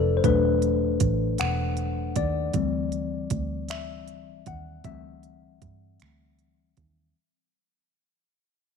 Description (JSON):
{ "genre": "slow six-eight R&B", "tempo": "52 BPM (dotted quarters)", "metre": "6/8", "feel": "straight", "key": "unclear", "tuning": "A4 = 440 Hz", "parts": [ { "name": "mellow tine electric piano", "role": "accompaniment", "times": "0.0-7.2 s", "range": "E3 to F#5", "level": "-26 LUFS", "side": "left 7 dB", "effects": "medium stereo tremolo" }, { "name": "vintage muted fingered electric bass", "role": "bass", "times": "0.0-7.1 s", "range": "E1 to G2", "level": "-28 LUFS", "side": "right 3 dB", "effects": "none" }, { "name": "smooth R&B drum kit", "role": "drums", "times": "0.2-7.0 s", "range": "finger snaps, hi-hat, kick drum", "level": "-29 LUFS", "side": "right 7 dB", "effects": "none" } ], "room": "light reverb", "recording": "1960s-style stereo with parts hard left and right", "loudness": "-23 LUFS", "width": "side -6 dB against mid", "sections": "0.0-7.2 A section", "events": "fade-out 0.0-7.2; tine electric piano solo 0.0-7.2", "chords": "0.0 E9sus4; 2.5 D9sus4" }